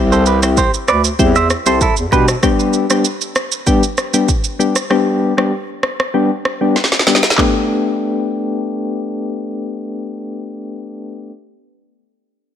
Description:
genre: afrobeats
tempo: 97 BPM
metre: 4/4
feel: straight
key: G major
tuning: A4 = 440 Hz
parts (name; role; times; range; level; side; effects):
- soft electric-piano-like synth keys; accompaniment; 0.0-11.3 s; G3 to G4; -17 LUFS; left 3 dB; chorus, tremolo, low-pass filter
- mellow bass clarinet; bass; 0.0-2.3 s; C2 to B2; -18 LUFS; equal; none
- clean electric guitar; riff; 0.1-2.3 s; E4 to E5; -17 LUFS; right 6 dB; low-pass filter, ping-pong delay
- afro-pop drum kit; drums; 0.1-7.5 s; handclaps, kick drum, rim click, shaker, snare drum; -17 LUFS; right 1 dB; none
room: light reverb, digital ambience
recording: none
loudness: -13 LUFS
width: side -9 dB against mid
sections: 0.0-7.4 A section; 7.4-9.9 B section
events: filter sweep 0.0-7.4; drum fill 6.8-7.4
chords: 0.0 C; 2.1 G/B; 7.4 Gadd9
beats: 0.57 1.19 1.81 | 2.43 3.05 3.67 4.29 | 4.90 5.52 6.14 6.76 | 7.38 8.00 8.62 9.23

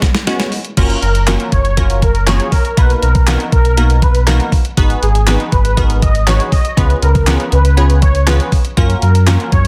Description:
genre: dance-pop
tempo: 120 BPM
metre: 4/4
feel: straight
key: F# major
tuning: A4 = 438 Hz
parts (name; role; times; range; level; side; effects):
- wavetable chord stab; accompaniment; 0.0-9.6 s; G#3 to C#5; -23 LUFS; equal; sidechain pumping
- crisp 8-bit digital drum machine; drums; 0.0-9.7 s; crash cymbal, handclaps, hi-hat, kick drum, snare drum; -17 LUFS; equal; none
- sub bass with octave; bass; 0.8-9.7 s; F#1 to F#2; -15 LUFS; equal; sidechain pumping
- filtered supersaw swell; melody; 1.0-9.7 s; G#4 to D#5; -22 LUFS; equal; sidechain pumping, digital delay
room: light reverb, digital ambience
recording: dense, heavily limited modern master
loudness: -13 LUFS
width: mono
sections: 0.8-9.7 A section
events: drum fill 0.0-0.8; drop 0.8-9.7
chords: 0.0 C#7sus4; 0.8 F#maj7; 2.8 Bmaj7; 4.8 G#m7; 6.8 C#7; 8.8 F#maj7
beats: 0.27 | 0.77 1.27 1.77 2.27 | 2.77 3.27 3.77 4.27 | 4.77 5.27 5.77 6.27 | 6.77 7.27 7.77 8.27 | 8.77 9.27

